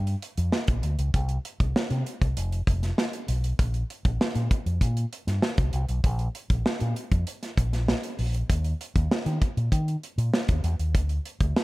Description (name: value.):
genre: polished 1980s jazz-funk pop.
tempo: 98 BPM.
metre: 4/4.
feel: straight.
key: unclear.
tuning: A4 = 440 Hz.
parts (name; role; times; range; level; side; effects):
fingered electric bass with an envelope filter; bass; 0.0-11.6 s; F1 to Eb3; -26 LUFS; equal; none.
modern studio drum kit; drums; 0.1-11.6 s; hi-hat, kick drum, snare drum; -26 LUFS; equal; gated reverb.
room: little or no reverb.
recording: none.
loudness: -24 LUFS.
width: side -20 dB against mid.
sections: 0.0-11.6 A section.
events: none.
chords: none.